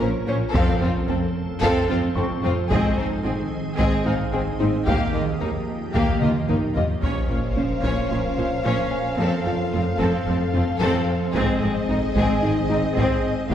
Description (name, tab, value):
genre	cinematic, hybrid orchestral and electronic film score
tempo	111 BPM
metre	4/4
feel	straight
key	Bb dorian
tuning	A4 = 440 Hz
part	dark symphonic violin section	melody	0.0-13.5 s	Ab4 to F5	-30 LUFS	left 2 dB	none
part	clear symphonic violin section	second line	0.0-13.5 s	C4 to Db5	-30 LUFS	left 1 dB	none
part	rich symphonic viola section	accompaniment	0.0-13.5 s	Bb3 to Db4	-28 LUFS	equal	none
part	soft additive organ-like pad	sustained chords	0.0-13.5 s	Eb3 to Eb5	-29 LUFS	equal	ensemble chorus, built-in reverb
part	harp-like synth pluck	arpeggios	0.0-13.5 s	Eb3 to Bb4	-28 LUFS	equal	chorus, phaser, tape echo
part	rich symphonic cello section	bass	0.0-13.5 s	Eb2 to Bb2	-28 LUFS	right 1 dB	none
part	rich symphonic double bass section	bass	0.0-13.5 s	F1 to Eb2	-28 LUFS	right 1 dB	none
part	warm concert grand piano	texture	0.0-11.4 s	C5 to F6	-38 LUFS	left 1 dB	none
part	taiko ensemble	drums	0.5-8.1, 11.3-13.5 s	none	-28 LUFS	equal	none
part	mellow French horn section	sustained chords	7.0-13.5 s	C4 to C5	-30 LUFS	left 2 dB	none
part	sub drop	sound effects	7.0-9.2 s	none	-30 LUFS	equal	none
room	wet scoring stage reverb, RT60 1.6 s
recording	heard from further back in the room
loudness	-20 LUFS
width	side -10 dB against mid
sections	0.0-7.0 A section; 7.0-13.5 B section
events	drum fill 6.2-7.0; impact 7.0-9.2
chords	0.0 Bbmadd9; 0.5 F; 2.7 Ab; 4.9 Ebadd9; 7.0 Bbmadd9; 9.2 F; 11.4 Ab